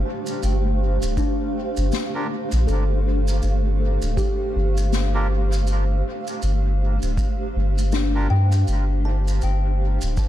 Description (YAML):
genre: ambient dub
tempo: 80 BPM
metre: 4/4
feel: swing 59% on 16ths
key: unclear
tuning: A4 = 437 Hz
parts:
  - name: granular cloud pad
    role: sustained chords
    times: 0.0-10.3 s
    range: A3 to F5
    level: -28 LUFS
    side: right 1 dB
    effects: built-in reverb
  - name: kalimba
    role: arpeggios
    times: 0.0-10.3 s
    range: D4 to A5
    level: -31 LUFS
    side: left 3 dB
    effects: low-pass filter, dub echo
  - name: soft dub sub bass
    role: bass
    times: 0.0-10.2 s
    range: D1 to G2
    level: -20 LUFS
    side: equal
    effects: none
  - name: shaker and snare drum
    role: drums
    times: 0.3-10.3 s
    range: none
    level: -32 LUFS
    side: left 4 dB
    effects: studio reverb, dub echo
  - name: electronic kick drum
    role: drums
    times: 1.2-10.3 s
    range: none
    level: -24 LUFS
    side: equal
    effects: overdrive, studio reverb
  - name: melodica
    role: stabs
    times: 2.1-8.3 s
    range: D4 to Bb4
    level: -35 LUFS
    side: right 2 dB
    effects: vintage 12-bit sampler grit, dub echo
room: small room ambience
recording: none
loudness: -19 LUFS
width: side -13 dB against mid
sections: 0.0-10.3 A section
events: filter sweep on kalimba 0.0-10.3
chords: 0.0 G7(no3)